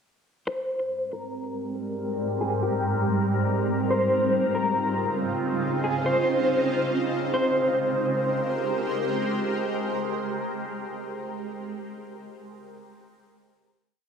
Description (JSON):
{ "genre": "hip hop, atmospheric cloud-rap", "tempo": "140 BPM", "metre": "4/4", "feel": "half-time", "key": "Ab major", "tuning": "A4 = 440 Hz", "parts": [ { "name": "electric guitar at the edge of break-up", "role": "melody", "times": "0.5-8.6 s", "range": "G4 to C5", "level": "-26 LUFS", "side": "equal", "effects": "tremolo, low-pass filter, tape echo" }, { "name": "shimmering ambient pad", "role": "sustained chords", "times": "1.3-10.8 s", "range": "Ab2 to C5", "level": "-26 LUFS", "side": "equal", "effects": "chorus, built-in reverb, phaser, low-pass filter" } ], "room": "wet lush hall reverb, RT60 2.4 s", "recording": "none", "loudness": "-24 LUFS", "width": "side -6 dB against mid", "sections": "0.5-7.3 breakdown; 7.3-10.8 final chord", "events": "filter sweep 0.5-7.3", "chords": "0.5 Abmaj9; 3.9 Dbmaj9; 7.3 Abmaj9", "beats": "| 0.48 0.91 1.34 1.77 | 2.19 2.62 3.05 3.48 | 3.91 4.34 4.77 5.20 | 5.62 6.05 6.48 6.91 | 7.34 7.77 8.20 8.62 | 9.05 9.48 9.91 10.34" }